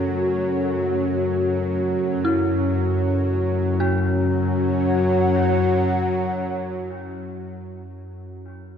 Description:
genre	ambient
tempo	free time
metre	none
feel	none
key	F# minor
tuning	A4 = 440 Hz
part	dark analog pad	sustained chords	0.0-7.8 s	C#4 to F#5	-23 LUFS	equal	chorus
part	dark detuned synth bell	arpeggios	0.0-8.8 s	E4 to A4	-29 LUFS	left 1 dB	chorus, phaser, analog delay
part	bowed-like drone	drone	0.0-7.3 s	F#2 to F#3	-24 LUFS	left 1 dB	built-in reverb
part	bubbling stepped-filter texture	texture	0.0-3.8 s	A3 to F#4	-34 LUFS	left 1 dB	none
room	wet plate reverb, RT60 2.4 s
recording	dreamy mix soaked in reverb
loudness	-19 LUFS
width	side -8 dB against mid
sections	0.0-3.8 A section; 3.8-7.9 B section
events	none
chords	0.0 F#5

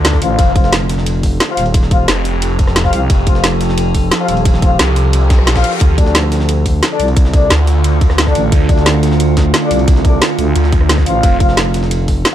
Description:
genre	dark technical drum and bass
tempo	177 BPM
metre	4/4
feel	straight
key	unclear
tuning	A4 = 441 Hz
part	metallic inharmonic drone	sustained chords	0.0-12.3 s	D3 to A4	-19 LUFS	right 2 dB	chorus, built-in reverb, sidechain pumping
part	warm brass ensemble	stabs	0.0-11.6 s	D4 to F5	-20 LUFS	left 4 dB	tape echo
part	phased detuned saw bass	bass	0.0-11.4 s	F1 to D2	-13 LUFS	equal	phaser, overdrive
part	drum and bass drum kit	drums	0.0-12.3 s	hi-hat, rim click, snare drum	-16 LUFS	equal	none
part	jungle sampler-style drum kit	drums	0.0-12.3 s	hi-hat, ride cymbal, snare drum	-25 LUFS	right 1 dB	overdrive, high-pass filter on cymbals, high-pass filter on snare, high-pass filter on hats, high-pass filter on room
part	electronic kick drum	drums	0.1-12.1 s	none	-12 LUFS	equal	none
part	growling FM bass	bass	0.2-12.2 s	Eb1 to D2	-16 LUFS	equal	none
part	reverse cymbal	sound effects	5.3-5.8 s	none	-25 LUFS	left 6 dB	none
room	digital ambience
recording	dark, warm production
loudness	-10 LUFS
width	side -11 dB against mid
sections	0.0-12.3 A section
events	reverse cymbal 5.3-5.8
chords	0.4 F; 5.8 Dm; 11.2 F

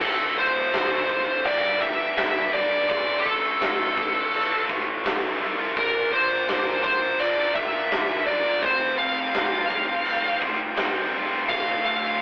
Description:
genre	quiet-loud alternative rock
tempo	84 BPM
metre	4/4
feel	straight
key	D minor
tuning	A4 = 440 Hz
part	smooth overdriven lead guitar	melody	0.0-12.2 s	G4 to F5	-26 LUFS	equal	none
part	cranked stack guitar	riff	0.0-12.2 s	D2 to Bb4	-30 LUFS	equal	overdrive
part	tight distorted guitar	riff	0.0-12.2 s	D2 to Bb4	-34 LUFS	equal	none
part	fuzz picked electric bass	bass	0.0-12.2 s	D1 to C2	-37 LUFS	equal	overdrive
part	huge arena drum kit	drums	0.0-11.7 s	crash cymbal, kick drum, snare drum	-30 LUFS	equal	none
part	raw garage guitar	riff	11.5-12.2 s	D2 to D3	-38 LUFS	equal	overdrive
room	moderate small room reverb, RT60 0.5 s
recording	rough rehearsal-room recording, warm saturation, telephone sound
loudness	-23 LUFS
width	mono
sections	0.0-12.2 A section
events	none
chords	0.0 Dm; 1.5 Gm; 2.9 Dm/A; 5.8 Bb; 8.6 Fsus2; 11.5 Dm

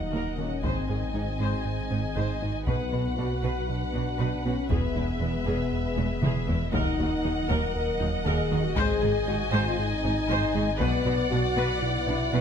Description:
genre	cinematic, hybrid orchestral and electronic film score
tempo	118 BPM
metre	4/4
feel	straight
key	unclear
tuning	A4 = 441 Hz
part	rich studio violin section	melody	0.0-12.4 s	E5 to Ab5	-35 LUFS	left 2 dB	none
part	warm symphonic violin section	second line	0.0-12.4 s	B4 to Eb5	-36 LUFS	left 3 dB	none
part	warm French horn section	sustained chords	0.0-12.4 s	B3 to Bb4	-31 LUFS	left 4 dB	none
part	warm analog pad	sustained chords	0.0-12.4 s	Gb3 to F#5	-38 LUFS	equal	chorus
part	soft round pluck	arpeggios	0.0-12.4 s	Eb3 to B4	-41 LUFS	left 4 dB	none
part	round analog bass	riff	0.0-12.4 s	Eb2 to B3	-33 LUFS	right 3 dB	none
part	swelling detuned saw bass	bass	0.0-12.4 s	Eb1 to B1	-34 LUFS	equal	none
part	rich chamber viola section	accompaniment	0.1-12.4 s	B3 to C5	-35 LUFS	equal	none
part	rich studio double bass section	bass	0.1-12.4 s	E1 to Eb2	-33 LUFS	right 4 dB	none
part	rich symphonic cello section	bass	0.1-12.4 s	Eb2 to B2	-34 LUFS	right 2 dB	none
part	taiko ensemble	drums	0.6-11.3 s	none	-32 LUFS	left 1 dB	none
room	light reverb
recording	none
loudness	-24 LUFS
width	side -7 dB against mid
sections	0.0-12.4 A section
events	drum fill 6.0-6.7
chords	0.0 Ebm; 0.6 Ab; 2.7 Bm; 4.7 E; 6.7 Ebm; 8.8 Ab; 10.8 Bm

